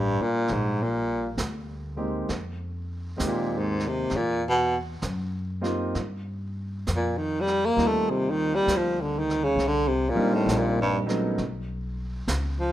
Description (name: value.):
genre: jazz ballad.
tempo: 66 BPM.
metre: 4/4.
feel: swing 66% on 8ths.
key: unclear.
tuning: A4 = 440 Hz.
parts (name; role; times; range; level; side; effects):
breathy baritone saxophone; melody; 0.0-12.7 s; G2 to Bb3; -24 LUFS; equal; none.
warm grand piano; accompaniment; 0.0-11.4 s; Gb3 to G4; -30 LUFS; equal; none.
upright bass; bass; 0.0-12.7 s; A1 to G2; -32 LUFS; equal; none.
jazz brush drum kit; drums; 0.5-12.7 s; brushed snare drum, hi-hat, snare drum; -35 LUFS; right 3 dB; none.
room: light reverb.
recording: minimal, uncompressed stereo recording.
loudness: -24 LUFS.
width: side -13 dB against mid.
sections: 0.0-12.7 A section.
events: baritone saxophone solo 0.0-12.7.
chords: 0.0 Gm7; 2.3 Fm11; 4.1 Esus2; 5.9 Eb69; 9.6 Cm7; 11.4 Bsus2.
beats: 0.48 1.38 | 2.29 3.19 4.10 5.02 | 5.94 6.86 7.77 8.67 | 9.58 10.48 11.39 12.29.